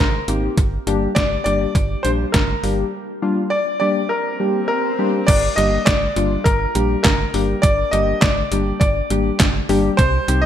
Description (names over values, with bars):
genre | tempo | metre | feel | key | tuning
synth-pop | 102 BPM | 4/4 | straight | unclear | A4 = 441 Hz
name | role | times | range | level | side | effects
clear concert grand piano | melody | 0.0-10.5 s | Bb4 to Eb5 | -21 LUFS | left 1 dB | digital delay
slap-like FM bass | bass | 0.0-10.5 s | G1 to C2 | -22 LUFS | right 1 dB | none
muted felt-like synth keys | accompaniment | 0.3-10.5 s | G3 to G4 | -22 LUFS | left 3 dB | chorus
detuned 8-bit digital drum machine | drums | 0.3-10.4 s | crash cymbal, handclaps, hi-hat, kick drum, snare drum | -18 LUFS | right 1 dB | overdrive, gated reverb
swell | sound effects | 4.1-5.3 s | none | -28 LUFS | equal | none
room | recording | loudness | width
moderate lush hall reverb, RT60 1.8 s, digital ambience | bright 1980s-style digital production | -16 LUFS | side -10 dB against mid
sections
0.0-5.3 A section; 5.3-10.5 B section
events
swell 4.1-5.3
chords
0.0 Abadd9; 0.6 Gm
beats
| 0.58 1.16 1.75 2.34 | 2.93 3.52 4.11 4.69 | 5.28 5.87 6.46 7.05 | 7.63 8.22 8.81 9.40 | 9.99